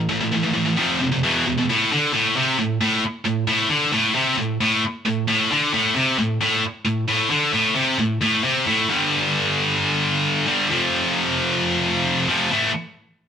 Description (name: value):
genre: metal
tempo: 133 BPM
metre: 4/4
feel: straight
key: A minor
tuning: A4 = 441 Hz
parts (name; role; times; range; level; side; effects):
- scooped high-gain guitar; solo; 0.0-12.7 s; E2 to A3; -18 LUFS; equal; distortion
room: moderate studio reverb, RT60 0.8 s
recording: band playing live in one room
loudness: -18 LUFS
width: side -8 dB against mid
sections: 0.0-1.7 A section; 1.7-8.9 B section; 8.9-12.5 C section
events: none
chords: 0.0 A5; 0.8 F5; 1.2 E5; 1.7 Am; 8.9 G5; 10.7 F5; 12.5 A5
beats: 0.33 0.78 1.23 | 1.68 2.13 2.58 3.03 | 3.48 3.93 4.38 4.83 | 5.29 5.74 6.19 6.64 | 7.09 7.54 7.99 8.44 | 8.89 9.34 9.80 10.25 | 10.70 11.15 11.61 12.06 | 12.51